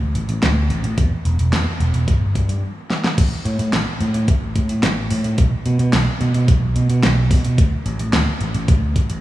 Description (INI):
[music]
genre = synthwave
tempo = 109 BPM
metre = 4/4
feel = straight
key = unclear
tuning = A4 = 440 Hz
[part]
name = picked electric bass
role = bass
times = 0.0-9.2 s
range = E1 to B2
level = -18 LUFS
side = right 1 dB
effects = sidechain pumping
[part]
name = pop drum kit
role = drums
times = 0.2-9.2 s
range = crash cymbal, hi-hat, snare drum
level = -22 LUFS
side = equal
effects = studio reverb
[part]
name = electronic kick drum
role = drums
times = 1.0-9.1 s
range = none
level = -16 LUFS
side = equal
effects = studio reverb
[sound]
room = light reverb, digital ambience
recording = small room ambience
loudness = -16 LUFS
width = side -15 dB against mid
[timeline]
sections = 0.0-3.2 A section; 3.2-9.2 B section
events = stop 2.6-3.2; drum fill 2.9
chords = none